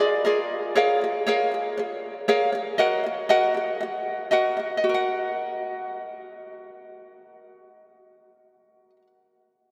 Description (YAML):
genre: pop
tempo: 117 BPM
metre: 4/4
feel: swing 60% on 16ths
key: Eb minor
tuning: A4 = 443 Hz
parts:
  - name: ukulele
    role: solo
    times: 0.0-9.1 s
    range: F4 to Gb5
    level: -24 LUFS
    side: equal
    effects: analog delay
room: wet cathedral reverb, RT60 6.3 s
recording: dreamy mix soaked in reverb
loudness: -24 LUFS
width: mono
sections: 0.8-4.8 A section; 4.8-8.9 B section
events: none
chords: 0.0 Bb7; 0.8 Db6; 2.8 Ebm